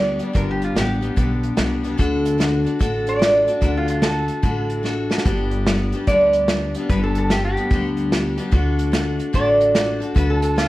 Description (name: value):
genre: honky-tonk and classic country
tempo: 147 BPM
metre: 4/4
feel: swing 64% on 8ths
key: G major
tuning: A4 = 435 Hz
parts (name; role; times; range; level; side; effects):
- lap resonator guitar; melody; 0.0-10.7 s; F4 to D5; -20 LUFS; right 1 dB; slapback echo
- picked steel-string acoustic guitar; accompaniment; 0.0-10.7 s; G2 to A4; -22 LUFS; left 2 dB; none
- upright bass; bass; 0.0-10.7 s; G1 to D2; -24 LUFS; equal; none
- unplugged drum kit; drums; 0.2-10.7 s; hi-hat, kick drum, snare drum; -22 LUFS; equal; none
room: moderate large studio reverb, RT60 0.7 s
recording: worn, warbling old tape, cassette tape, warbly pitch drift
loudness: -17 LUFS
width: side -17 dB against mid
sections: 0.0-10.7 A section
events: resonator guitar played with a steel bar solo 0.0-10.7; drum fill 4.9-5.3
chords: 0.0 G; 2.0 D; 5.3 G; 8.5 D